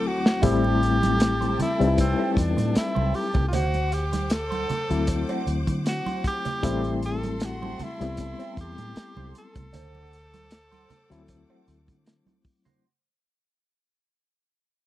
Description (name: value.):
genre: lush 1970s-style soul.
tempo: 77 BPM.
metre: 4/4.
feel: swing 54% on 16ths.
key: unclear.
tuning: A4 = 445 Hz.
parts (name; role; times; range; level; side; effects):
breathy tenor saxophone; melody; 0.0-12.4 s; C4 to A4; -30 LUFS; equal; slapback echo.
bright reed electric piano; accompaniment; 0.0-12.9 s; D2 to B4; -27 LUFS; left 4 dB; overdrive, fast tremolo.
rich studio string section; sustained chords; 0.0-12.8 s; A4 to D6; -40 LUFS; left 1 dB; none.
warm soul drum kit; drums; 0.3-12.8 s; hi-hat, kick drum, snare drum; -24 LUFS; equal; none.
electric guitar through a small old amp; riff; 0.4-12.8 s; D4 to C5; -36 LUFS; right 8 dB; wah.
vintage muted fingered electric bass; bass; 0.4-12.2 s; A1 to D3; -28 LUFS; equal; none.
congas; percussion; 0.4-12.8 s; none; -33 LUFS; right 5 dB; none.
room: little or no reverb.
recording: dry, close 1970s-style studio recording, lossy compression artefacts.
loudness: -22 LUFS.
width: side -14 dB against mid.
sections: 0.0-12.8 A section.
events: fade-out 0.0-12.8; drum fill 0.0-0.4.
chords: 0.4 Am7; 3.5 D7; 6.6 Am7; 9.7 D7.